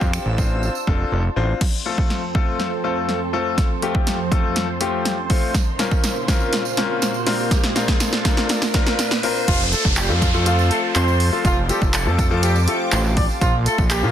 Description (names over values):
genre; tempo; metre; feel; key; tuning
dance-pop; 122 BPM; 4/4; straight; F major; A4 = 442 Hz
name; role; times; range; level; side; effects
clear concert grand piano; accompaniment; 0.0-14.1 s; F3 to C5; -24 LUFS; left 6 dB; sidechain pumping
lush unison pad; sustained chords; 0.0-14.1 s; F2 to E6; -27 LUFS; right 3 dB; chorus, phaser, sidechain pumping
fat analog bass; bass; 0.0-1.5, 9.5-14.1 s; F1 to Bb2; -20 LUFS; equal; sidechain pumping
punchy analog drum machine; drums; 0.0-14.0 s; crash cymbal, finger snaps, handclaps, hi-hat, kick drum, snare drum; -20 LUFS; equal; overdrive, soft clipping on snare
tambourine; percussion; 0.0-0.9, 5.5-14.1 s; none; -33 LUFS; right 13 dB; none
riser and downlifter; sound effects; 4.8-13.4 s; none; -28 LUFS; right 2 dB; none
warm horn section; melody; 9.5-14.1 s; F3 to D5; -24 LUFS; right 1 dB; ping-pong delay
room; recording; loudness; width
light reverb, digital ambience; dense, heavily limited modern master; -17 LUFS; side -10 dB against mid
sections
0.0-1.6 A section; 1.6-9.5 B section; 9.5-14.1 C section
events
silent gap 1.1-1.6; build-up 1.6-9.5; drum fill 1.6-9.5; riser 4.8-9.5; drop 9.5-14.1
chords
0.0 Dm7; 1.6 F; 5.5 Bbmadd9; 7.3 Bbadd9; 9.5 F; 13.4 Bbmadd9